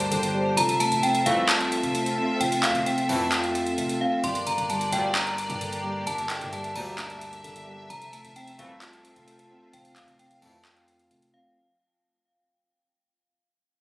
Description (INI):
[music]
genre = hip hop, trap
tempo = 131 BPM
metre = 4/4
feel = half-time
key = unclear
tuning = A4 = 440 Hz
[part]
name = metallic FM bell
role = melody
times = 0.0-11.5 s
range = F5 to C6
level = -27 LUFS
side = equal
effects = chorus, digital delay
[part]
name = mellow tine electric piano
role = accompaniment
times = 0.0-11.6 s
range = G2 to F4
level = -30 LUFS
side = equal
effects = none
[part]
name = bright symphonic string section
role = sustained chords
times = 0.0-11.5 s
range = Bb3 to F5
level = -31 LUFS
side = equal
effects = none
[part]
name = hard-hitting 808-style bass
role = bass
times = 0.0-11.3 s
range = F1 to G2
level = -39 LUFS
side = equal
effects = none
[part]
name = trap drum kit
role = drums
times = 0.0-11.3 s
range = handclaps, hi-hat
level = -28 LUFS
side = equal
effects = overdrive
[part]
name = warm brass ensemble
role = stabs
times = 1.3-10.6 s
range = D2 to A3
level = -31 LUFS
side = equal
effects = none
[sound]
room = light reverb, digital ambience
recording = recorded on a phone in the room, studio reverb, compression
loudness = -22 LUFS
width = side -21 dB against mid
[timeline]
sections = 0.0-11.6 A section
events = fade-out 0.0-11.6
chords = 0.0 Gm; 0.6 Fmaj7; 4.2 Gm; 7.9 Fmaj7